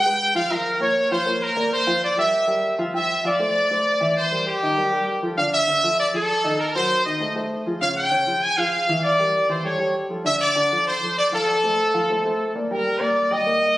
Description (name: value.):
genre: latin.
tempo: 197 BPM.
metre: 4/4.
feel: straight.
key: F major.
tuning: A4 = 437 Hz.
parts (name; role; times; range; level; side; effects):
brilliant trumpet section; melody; 0.0-13.8 s; G4 to Ab5; -19 LUFS; equal; none.
dark grand piano; accompaniment; 0.1-13.7 s; Db3 to G5; -26 LUFS; equal; none.
room: moderate plate reverb, RT60 2.9 s.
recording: recorded on a phone in the room, studio reverb.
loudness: -19 LUFS.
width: side -16 dB against mid.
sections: 0.0-2.9 A section; 2.9-12.7 B section; 12.7-13.8 A section.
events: none.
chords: 0.0 G7b9; 0.5 Bbmadd9/F; 1.7 Gm7; 2.3 Fsus24; 2.9 F69; 4.2 Edim; 4.8 Gm9; 5.4 Dm; 6.6 Cm7b5; 7.2 F; 7.8 Db; 9.0 Em7b5; 9.6 A7; 10.3 Dm7; 11.5 F; 12.7 Ebmaj7.